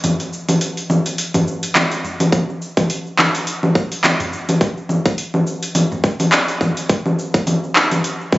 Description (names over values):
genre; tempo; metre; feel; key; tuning
downtempo; 105 BPM; 4/4; swing 56% on 16ths; none; none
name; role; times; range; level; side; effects
deep house drum kit; drums; 0.0-8.4 s; cabasa, congas, handclaps, hi-hat; -16 LUFS; equal; overdrive
udu; percussion; 0.0-6.7 s; none; -33 LUFS; left 1 dB; none
electronic kick drum; drums; 2.3-8.4 s; none; -16 LUFS; equal; overdrive
room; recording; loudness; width
moderate echo chamber reverb, RT60 2.1 s; recorded on a phone in the room, studio ambience, nothing above 7.8 kHz; -15 LUFS; side -18 dB against mid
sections
0.0-8.4 A section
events
break 0.0-2.3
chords
none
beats
| 0.04 0.61 1.18 1.75 | 2.33 2.90 3.47 4.04 | 4.61 5.18 5.75 6.33 | 6.90 7.47 8.04